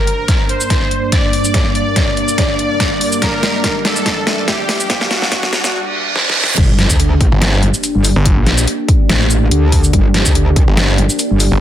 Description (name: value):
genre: heavy wobble dubstep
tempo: 143 BPM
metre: 4/4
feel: swing 55% on 16ths, half-time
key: G minor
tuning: A4 = 438 Hz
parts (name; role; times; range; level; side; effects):
- soft supersaw; melody; 0.0-5.7 s; F#4 to D5; -20 LUFS; equal; cassette tape, tape echo
- evolving wavetable pad; sustained chords; 0.2-11.6 s; G2 to D5; -22 LUFS; equal; chorus, built-in reverb, sidechain pumping
- riser, reverse cymbal and sub drop; sound effects; 0.0-8.3 s; none; -24 LUFS; right 2 dB; none
- airy breathy pad; texture; 0.0-5.7 s; Bb3 to D5; -24 LUFS; left 1 dB; chorus, sidechain pumping
- dubstep drum kit; drums; 0.1-11.5 s; crash cymbal, hi-hat, shaker, snare drum; -17 LUFS; equal; none
- electronic kick drum; drums; 0.3-10.7 s; none; -15 LUFS; equal; none
- metallic wobble bass; bass; 6.6-11.5 s; G1 to D2; -13 LUFS; equal; distortion, chorus, overdrive
- snarling distorted saw bass; bass; 7.3-11.6 s; G1; -14 LUFS; equal; distortion, overdrive
room: light reverb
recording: dense, heavily limited modern master, high-pass filter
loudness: -11 LUFS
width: side -11 dB against mid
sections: 0.0-6.6 A section; 6.6-11.6 B section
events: build-up 0.0-6.6; drum fill 0.0-5.7, 6.2-6.6; filter sweep on ambient pad 0.0-6.6; filter sweep 0.0-6.6; reverse cymbal 5.7-6.6; drop 6.6-11.6; impact 6.6-8.3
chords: 0.0 Gm